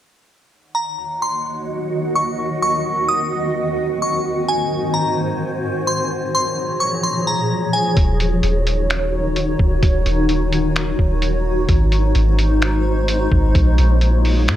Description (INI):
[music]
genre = hip hop, atmospheric cloud-rap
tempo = 129 BPM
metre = 4/4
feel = half-time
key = Eb dorian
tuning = A4 = 440 Hz
[part]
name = granular cloud pad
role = sustained chords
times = 1.3-14.6 s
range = Eb2 to Eb5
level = -21 LUFS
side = equal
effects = built-in reverb, sidechain pumping
[part]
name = wind-like tuned noise texture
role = texture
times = 1.0-7.9 s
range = C4 to Bb5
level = -33 LUFS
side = right 2 dB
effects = built-in reverb
[part]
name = glassy synth bell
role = melody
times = 0.7-8.0 s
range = Ab5 to Eb6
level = -20 LUFS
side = equal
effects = chorus, phaser, analog delay
[part]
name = soft 808-style bass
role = bass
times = 8.0-14.6 s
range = Eb1 to Bb2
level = -17 LUFS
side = equal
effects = none
[part]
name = lo-fi sampler-style drum kit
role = drums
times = 8.0-14.6 s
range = finger snaps, hi-hat, kick drum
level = -19 LUFS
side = equal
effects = none
[sound]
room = digital ambience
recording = dry, gritty hardware recording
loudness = -16 LUFS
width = side -12 dB against mid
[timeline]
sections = 0.5-8.0 A section; 8.0-14.6 B section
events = none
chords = 0.5 Ebm7; 4.2 Ab7; 6.1 Bbm7; 8.0 Ebm7; 11.7 Ab7; 13.5 Bbm7